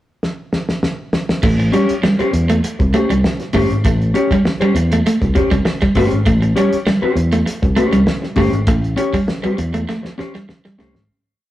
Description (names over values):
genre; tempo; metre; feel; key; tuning
funk; 99 BPM; 4/4; straight; A mixolydian; A4 = 442 Hz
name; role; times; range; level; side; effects
cloth-damped thuddy drum kit; drums; 0.2-11.1 s; crash cymbal, hi-hat, kick drum, snare drum; -19 LUFS; equal; none
electric guitar at the edge of break-up; riff; 1.4-10.9 s; G3 to A3; -18 LUFS; right 1 dB; none
fingered electric bass; bass; 1.4-11.1 s; G1 to E2; -18 LUFS; equal; none
mellow electric guitar; accompaniment; 1.7-11.0 s; C#4 to C#5; -19 LUFS; left 2 dB; none
room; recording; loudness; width
moderate stone room reverb, RT60 1.2 s; rough rehearsal-room recording, warm saturation; -14 LUFS; side -14 dB against mid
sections
0.0-1.4 pickup bar; 1.4-11.1 A section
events
drum fill 0.2-1.4, 9.9-11.1; fade-out 8.7-11.1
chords
0.0 N.C.; 1.4 A7#9